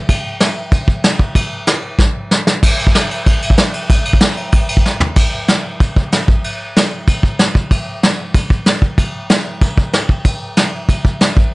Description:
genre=punk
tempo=189 BPM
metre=4/4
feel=straight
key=none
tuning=none
part: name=vintage brush drum kit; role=drums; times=0.1-11.4 s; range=crash cymbal, kick drum, snare drum, toms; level=-12 LUFS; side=equal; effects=none
room=little or no reverb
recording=nothing above 10.7 kHz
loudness=-12 LUFS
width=side -23 dB against mid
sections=0.0-2.6 A section; 2.6-5.2 B section; 5.2-11.5 C section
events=drum fill 2.0-2.6, 4.8-5.2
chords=none

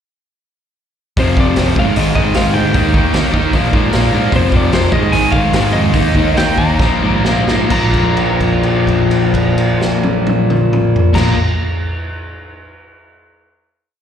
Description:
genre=punk rock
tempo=128-153 BPM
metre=4/4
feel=straight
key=unclear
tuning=A4 = 440 Hz
part: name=lightly driven lead guitar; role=melody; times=1.2-11.3 s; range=C5 to Bb5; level=-20 LUFS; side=left 1 dB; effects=slapback echo
part: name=distorted electric guitar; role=riff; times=1.2-11.4 s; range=F2 to Eb4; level=-16 LUFS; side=left 8 dB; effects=distortion, slapback echo
part: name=distorted electric guitar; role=riff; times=1.2-11.4 s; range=F2 to Eb4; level=-19 LUFS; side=right 11 dB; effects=distortion, slapback echo
part: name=picked electric bass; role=bass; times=1.2-11.3 s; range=F1 to Ab2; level=-18 LUFS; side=right 1 dB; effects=none
part: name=raw garage drum kit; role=drums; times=1.2-11.3 s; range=crash cymbal, hi-hat, kick drum, snare drum, toms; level=-17 LUFS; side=right 1 dB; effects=none
room=little or no reverb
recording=live gig heard through the venue's PA, recital hall reverb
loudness=-11 LUFS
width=side -8 dB against mid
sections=1.2-7.7 verse; 7.7-11.4 final chord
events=slowing down 4.3-7.7; drum fill 6.8-7.7; held note 7.7-11.2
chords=1.2 F5; 1.8 Ab5; 2.8 Eb; 3.5 Bb5; 4.3 F5; 4.9 Ab5; 5.9 Eb5; 6.8 Bb5

